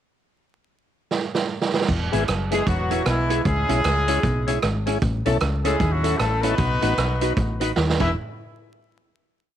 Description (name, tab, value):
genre	ska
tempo	153 BPM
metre	4/4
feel	swing 61% on 8ths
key	E major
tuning	A4 = 442 Hz
part	street-band drum kit	drums	1.1-8.1 s	crash cymbal, hi-hat, kick drum, rim click, snare drum	-25 LUFS	right 4 dB	none
part	fingered electric bass	bass	1.9-8.1 s	E1 to D#2	-24 LUFS	equal	none
part	hollow-body jazz guitar	accompaniment	2.1-8.1 s	B3 to B4	-30 LUFS	right 10 dB	none
part	tonewheel organ	stabs	2.1-8.1 s	G#3 to B4	-28 LUFS	left 11 dB	slow rotary speaker
part	clear horn section	melody	2.5-8.1 s	E3 to E5	-24 LUFS	left 1 dB	none
room	light reverb, small room ambience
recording	1960s-style stereo with parts hard left and right, vinyl crackle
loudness	-19 LUFS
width	side -10 dB against mid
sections	0.3-1.9 pickup bar; 1.9-8.2 A section; 8.2-9.6 final hit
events	drum fill 1.1-1.9, 7.8-8.2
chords	0.3 N.C.; 1.9 E; 3.5 C#m; 5.0 A; 6.6 B; 8.0 E; 8.2 N.C.